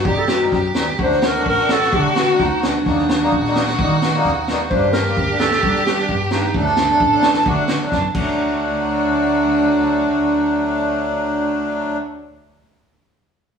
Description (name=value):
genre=klezmer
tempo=131 BPM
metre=4/4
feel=straight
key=D phrygian dominant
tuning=A4 = 441 Hz
part: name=mellow clarinet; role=melody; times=0.0-12.0 s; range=D4 to C5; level=-20 LUFS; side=equal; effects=none
part: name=rich violin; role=second line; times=0.0-12.0 s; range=D4 to A4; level=-22 LUFS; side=right 2 dB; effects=none
part: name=accordion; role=accompaniment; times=0.0-12.0 s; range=F#3 to Eb4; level=-21 LUFS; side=left 1 dB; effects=light tremolo tuning
part: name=dark double bass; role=bass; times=0.1-12.0 s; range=A1 to G3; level=-25 LUFS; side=equal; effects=none
part: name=street-band drum kit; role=drums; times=0.1-8.3 s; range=crash cymbal, kick drum, snare drum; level=-22 LUFS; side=equal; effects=none
room=wet stone room reverb, RT60 1.1 s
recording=band playing live in one room, small room ambience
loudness=-15 LUFS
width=side -6 dB against mid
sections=0.0-8.4 A section; 8.4-12.0 B section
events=speeding up 0.0-12.0; drum fill 7.9-8.4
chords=0.0 Cm; 1.0 D; 2.9 Eb; 4.7 Gm; 6.5 D